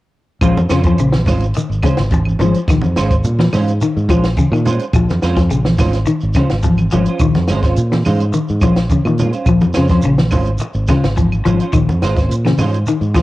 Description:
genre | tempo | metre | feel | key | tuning
afrobeat | 106 BPM | 4/4 | straight | Bb minor | A4 = 440 Hz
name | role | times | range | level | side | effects
electric guitar at the edge of break-up | arpeggios | 0.4-13.2 s | Db3 to F3 | -17 LUFS | left 3 dB | phaser
semi-hollow electric guitar | stabs | 0.4-13.2 s | Ab3 to C5 | -23 LUFS | right 4 dB | ensemble chorus
fingered electric bass | bass | 0.4-13.2 s | Ab1 to Bb2 | -17 LUFS | equal | none
compact cocktail drum kit | drums | 0.4-13.2 s | hi-hat, kick drum, snare drum | -18 LUFS | equal | cassette tape
claves | percussion | 0.4-13.2 s | none | -30 LUFS | right 2 dB | none
congas | percussion | 0.4-13.2 s | none | -20 LUFS | right 2 dB | none
shekere | percussion | 0.4-13.2 s | none | -26 LUFS | right 2 dB | none
room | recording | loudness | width
light reverb, studio reverb | home recording on cassette | -12 LUFS | side -17 dB against mid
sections
0.4-13.2 A section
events
none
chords
0.4 Bbm9

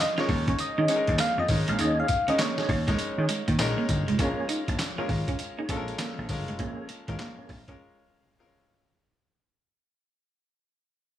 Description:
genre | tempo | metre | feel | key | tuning
R&B, new jack swing | 100 BPM | 4/4 | swing 63% on 16ths | Bb minor | A4 = 440 Hz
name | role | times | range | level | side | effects
soft struck synth lead | melody | 0.0-3.9 s | Db5 to F5 | -28 LUFS | equal | chorus, tape echo
clear concert grand piano | accompaniment | 0.0-9.0 s | Ab3 to Bb4 | -33 LUFS | left 3 dB | none
electric guitar at the edge of break-up | riff | 0.2-7.8 s | Ab3 to F4 | -32 LUFS | right 3 dB | lush chorus
tonewheel organ | stabs | 0.2-7.5 s | Bb3 to Ab4 | -36 LUFS | right 4 dB | chorus vibrato, fast rotary speaker, tape echo
boom bap sampler-style drum kit | drums | 0.2-7.8 s | handclaps, hi-hat, kick drum, snare drum, tambourine | -30 LUFS | equal | none
vintage slap bass | bass | 0.3-7.6 s | F1 to Eb3 | -29 LUFS | equal | none
room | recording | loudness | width
little or no reverb | small room ambience | -24 LUFS | side -12 dB against mid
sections
0.0-4.2 A section; 4.2-9.0 B section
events
fade-out 4.2-9.0; break 7.8-9.0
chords
0.0 Bbm7

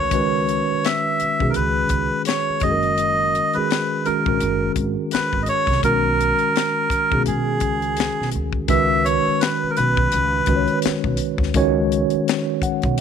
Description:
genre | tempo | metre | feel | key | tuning
R&B, neo-soul | 84 BPM | 4/4 | swing 58% on 16ths | unclear | A4 = 440 Hz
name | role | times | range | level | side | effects
melodica | melody | 0.0-10.8 s | G#4 to E5 | -20 LUFS | equal | slapback echo
mellow tine electric piano | accompaniment | 0.0-13.0 s | D#3 to F#5 | -22 LUFS | right 1 dB | slow stereo tremolo
upright bass | bass | 0.0-13.0 s | F#1 to B2 | -26 LUFS | equal | none
tight funk drum kit | drums | 0.1-13.0 s | hi-hat, kick drum, snare drum | -24 LUFS | left 4 dB | none
room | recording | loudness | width
studio reverb | 1960s-style stereo | -17 LUFS | side -7 dB against mid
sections
0.0-8.7 A section; 8.7-13.0 B section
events
tine electric piano fill 12.3-13.0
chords
0.0 C#m7; 2.6 F#69; 5.8 B6; 8.7 C#5

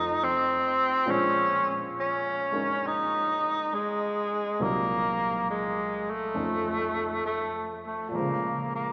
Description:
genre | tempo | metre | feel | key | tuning
jazz ballad | 68 BPM | 4/4 | swing 66% on 8ths | Bb minor | A4 = 440 Hz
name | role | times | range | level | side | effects
breathy tenor saxophone | melody | 0.0-8.9 s | Ab3 to Eb4 | -28 LUFS | equal | none
clear upright piano | accompaniment | 0.0-8.9 s | C2 to C5 | -36 LUFS | equal | none
room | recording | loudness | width
wet church reverb, RT60 3.8 s | recorded in a church or concert hall | -28 LUFS | mono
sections
0.0-8.1 A section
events
none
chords
0.0 F7; 1.1 Bbm9; 4.6 Cm7b5; 6.3 F7b13; 8.1 Bbm9

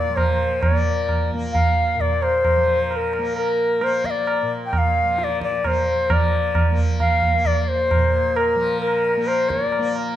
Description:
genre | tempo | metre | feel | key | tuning
indian classical, Hindustani | 132 BPM | 3/4 | straight | unclear | A4 = 440 Hz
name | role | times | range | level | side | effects
bright reedy bansuri | melody | 0.0-9.9 s | Bb4 to G5 | -20 LUFS | left 2 dB | none
tanpura | drone | 0.0-10.2 s | Bb2 to Bb3 | -29 LUFS | left 1 dB | none
tabla | percussion | 0.2-10.1 s | none | -22 LUFS | right 2 dB | none
room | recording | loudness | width
moderate recital hall reverb, RT60 1.7 s | dark, warm production | -18 LUFS | side -12 dB against mid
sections
0.0-6.1 A section; 6.1-10.2 B section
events
none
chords
none

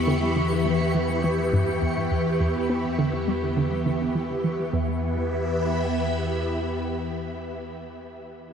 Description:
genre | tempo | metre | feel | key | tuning
ambient, sequencer-driven space music | 103 BPM | 4/4 | straight | E dorian | A4 = 440 Hz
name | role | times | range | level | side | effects
phased string machine | sustained chords | 0.0-7.8 s | E3 to B5 | -25 LUFS | left 1 dB | ensemble chorus, phaser
analog drone | bass | 0.0-6.4 s | E2 | -31 LUFS | left 1 dB | chorus, tube saturation
twinkling granular texture | texture | 0.0-4.7 s | C#6 | -37 LUFS | right 1 dB | built-in reverb
hollow square pluck | riff | 0.1-5.0 s | E2 to B3 | -27 LUFS | right 1 dB | chorus, phaser, tape echo
room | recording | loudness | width
wet huge ambient reverb, RT60 9.7 s | none | -22 LUFS | side -7 dB against mid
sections
0.0-4.7 A section; 4.7-7.1 B section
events
none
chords
0.0 Em

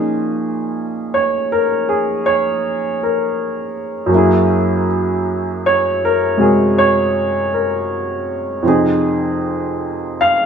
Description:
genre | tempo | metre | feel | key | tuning
jazz ballad | 53 BPM | 4/4 | swing 68% on 8ths | Bb minor | A4 = 437 Hz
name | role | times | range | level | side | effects
warm baby grand piano | solo | 0.0-10.5 s | F2 to F5 | -14 LUFS | equal | none
room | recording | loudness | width
wet stone room reverb, RT60 1.2 s | band playing live in one room | -14 LUFS | side -7 dB against mid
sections
0.0-10.5 A section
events
none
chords
0.0 Bbm7; 4.1 Gb9; 8.6 Fm7

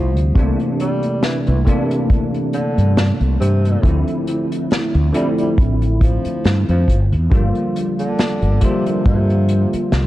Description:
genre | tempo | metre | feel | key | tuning
vaporwave | 69 BPM | 4/4 | swing 55% on 16ths | unclear | A4 = 439 Hz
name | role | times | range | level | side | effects
mellow tenor saxophone | melody | 0.0-9.7 s | C3 to G3 | -26 LUFS | equal | vintage 12-bit sampler grit, tape echo
bell-like tine electric piano | accompaniment | 0.0-10.1 s | C3 to F4 | -20 LUFS | equal | ensemble chorus, analog delay
mellow fretless electric bass | bass | 0.0-10.1 s | G1 to G2 | -16 LUFS | equal | wide subtle chorus
unplugged drum kit | drums | 0.2-10.1 s | hi-hat, snare drum | -22 LUFS | left 1 dB | none
kick drum | drums | 0.4-9.2 s | none | -15 LUFS | equal | none
room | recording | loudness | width
light reverb, small room ambience | dark, warm production, cassette tape | -14 LUFS | side -15 dB against mid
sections
0.0-10.1 A section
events
none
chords
0.4 C13; 3.8 Dm9; 6.9 Gm7

